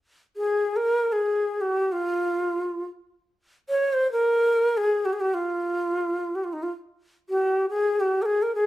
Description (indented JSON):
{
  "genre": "Arabic maqam ensemble",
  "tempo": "free time",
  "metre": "none",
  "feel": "none",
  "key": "F maqam bayati",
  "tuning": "A4 = 441 Hz",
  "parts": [
    { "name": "breathy bright ney", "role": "solo", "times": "0.4-8.7 s", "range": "Eb4 to Db5", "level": "-22 LUFS", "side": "equal", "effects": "none" }
  ],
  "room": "light reverb",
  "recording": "band playing live in one room",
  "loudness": "-22 LUFS",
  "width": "side -15 dB against mid",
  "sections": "0.0-8.7 A section",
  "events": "none",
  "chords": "none"
}